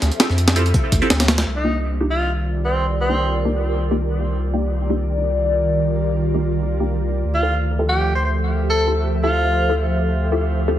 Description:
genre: drum and bass, jungle.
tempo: 166 BPM.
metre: 4/4.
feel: swing 54% on 16ths.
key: C dorian.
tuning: A4 = 441 Hz.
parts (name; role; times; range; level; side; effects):
ethereal airy pad; sustained chords; 0.0-10.8 s; Eb3 to E5; -24 LUFS; equal; ensemble chorus, built-in reverb, phaser.
filtered dub chord stab; stabs; 0.0-10.8 s; Bb3 to A4; -25 LUFS; left 1 dB; phaser, wide subtle chorus, dub echo.
saturated sub bass; bass; 0.0-10.8 s; C2 to F2; -21 LUFS; equal; none.
breakbeat sampler-style drum kit; drums; 0.0-1.5 s; hi-hat, kick drum, snare drum; -17 LUFS; equal; studio reverb.
warm tenor saxophone; melody; 1.6-3.4, 7.3-9.7 s; C4 to C5; -23 LUFS; equal; vintage 12-bit sampler grit, dub echo.
room: moderate digital room reverb, RT60 1.1 s.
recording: heavily compressed radio sound.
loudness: -17 LUFS.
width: side -12 dB against mid.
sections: 0.0-1.5 A section; 1.5-10.8 B section.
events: drop 0.0-1.5.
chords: 0.0 Dm11; 1.5 Cm11; 7.2 Dm11.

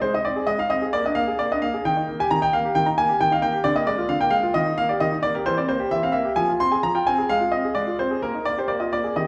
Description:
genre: classical-period piano sonatina.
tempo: 132 BPM.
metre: 4/4.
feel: rubato.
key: Eb major.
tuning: A4 = 441 Hz.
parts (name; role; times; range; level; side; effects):
clear concert grand piano; solo; 0.0-9.3 s; D3 to C6; -22 LUFS; equal; none.
room: wet recital hall reverb, RT60 1.5 s.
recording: recorded in a church or concert hall.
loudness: -22 LUFS.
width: mono.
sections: 0.0-9.3 A section.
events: none.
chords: 0.0 Ab; 0.9 Bb7; 1.8 Eb; 3.7 Bb7/D; 4.6 Eb; 5.5 C7/E; 6.4 Fm; 7.3 Fm/Ab; 8.2 Eb/Bb; 8.7 Bb7.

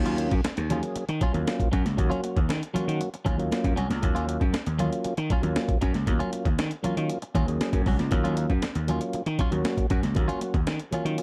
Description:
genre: funk.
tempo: 117 BPM.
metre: 4/4.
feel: straight.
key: Eb minor.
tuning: A4 = 440 Hz.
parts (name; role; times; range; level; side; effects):
mellow tonewheel organ; stabs; 0.0-11.2 s; Gb3 to Ab4; -34 LUFS; equal; overdrive, chorus vibrato, slow rotary speaker.
gritty slap bass; bass; 0.0-11.2 s; C2 to Eb3; -30 LUFS; equal; overdrive.
clean electric guitar; accompaniment; 0.1-11.2 s; Gb3 to Gb4; -36 LUFS; equal; spring reverb.
breakbeat sampler-style drum kit; drums; 0.1-11.2 s; hi-hat, kick drum, snare drum; -30 LUFS; equal; none.
congas; percussion; 0.4-11.0 s; none; -36 LUFS; equal; none.
room: little or no reverb.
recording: dark, warm production.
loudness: -26 LUFS.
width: mono.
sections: 0.0-11.2 A section.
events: none.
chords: 0.0 Ebm9.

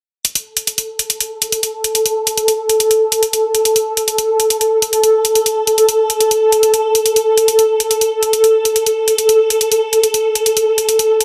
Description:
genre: psychedelic trance.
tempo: 141 BPM.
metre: 4/4.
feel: straight.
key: unclear.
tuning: A4 = 440 Hz.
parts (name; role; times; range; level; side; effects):
swarming drone; sustained chords; 0.9-11.2 s; A4; -15 LUFS; equal; built-in reverb.
electronic hi-hat; drums; 0.2-11.2 s; none; -18 LUFS; equal; small room ambience.
room: light reverb.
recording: dense, heavily limited modern master.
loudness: -14 LUFS.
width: mono.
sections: 0.2-11.2 A section.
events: none.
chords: none.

